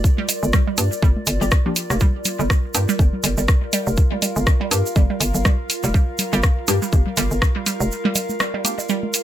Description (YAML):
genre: minimal techno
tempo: 122 BPM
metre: 4/4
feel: swing 57% on 16ths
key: G minor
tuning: A4 = 440 Hz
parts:
  - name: hollow knocking FM bass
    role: bass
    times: 0.0-7.9 s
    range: F1 to G2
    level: -21 LUFS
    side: equal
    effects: sidechain pumping
  - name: electronic kick drum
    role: drums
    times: 0.0-7.5 s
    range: none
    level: -16 LUFS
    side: equal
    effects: none
  - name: egg shaker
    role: percussion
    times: 0.0-9.2 s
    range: none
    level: -27 LUFS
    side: right 5 dB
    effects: none
  - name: warbly tape-like pad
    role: texture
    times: 0.0-9.2 s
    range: F4 to F5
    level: -29 LUFS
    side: left 1 dB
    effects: chorus, built-in reverb, sidechain pumping
  - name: hollow square pluck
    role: riff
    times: 0.2-8.9 s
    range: F3 to G4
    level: -26 LUFS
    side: right 4 dB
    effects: chorus, sidechain pumping, ping-pong delay
  - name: congas and bongos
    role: percussion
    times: 0.2-9.1 s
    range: none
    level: -29 LUFS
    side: right 1 dB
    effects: ping-pong delay
  - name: garage drum kit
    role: drums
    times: 0.3-9.2 s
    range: hi-hat, rim click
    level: -21 LUFS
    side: equal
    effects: none
  - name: filtered dub chord stab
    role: stabs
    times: 0.8-8.7 s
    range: Bb3 to G4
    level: -28 LUFS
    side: left 3 dB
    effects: phaser, lush chorus, ping-pong delay
room: light reverb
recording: none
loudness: -17 LUFS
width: side -12 dB against mid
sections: 0.0-9.2 A section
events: break 7.9-9.2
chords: 0.0 Gm